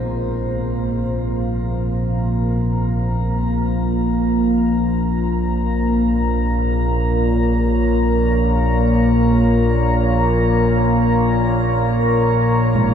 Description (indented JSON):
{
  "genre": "dark ambient drone",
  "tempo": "free time",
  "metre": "none",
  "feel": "none",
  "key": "Bb minor",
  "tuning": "A4 = 440 Hz",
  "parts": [
    { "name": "deep dark ambient pad", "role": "sustained chords", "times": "0.0-12.9 s", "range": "Bb3 to Bb5", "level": "-21 LUFS", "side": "equal", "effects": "chorus, built-in reverb, shimmer reverb" },
    { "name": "carillon bells", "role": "arpeggios", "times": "0.0-2.3, 12.8-12.9 s", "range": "Ab2 to Eb4", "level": "-33 LUFS", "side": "equal", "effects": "none" },
    { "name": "analog drone", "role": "drone", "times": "0.0-12.9 s", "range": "Bb1 to Bb2", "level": "-17 LUFS", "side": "equal", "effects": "chorus" }
  ],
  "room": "wet cathedral reverb, RT60 6.1 s",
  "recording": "in a vast, echoing space",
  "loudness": "-16 LUFS",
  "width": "side -8 dB against mid",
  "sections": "0.0-12.9 A section",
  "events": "none",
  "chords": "0.0 Bb5",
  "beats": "free time"
}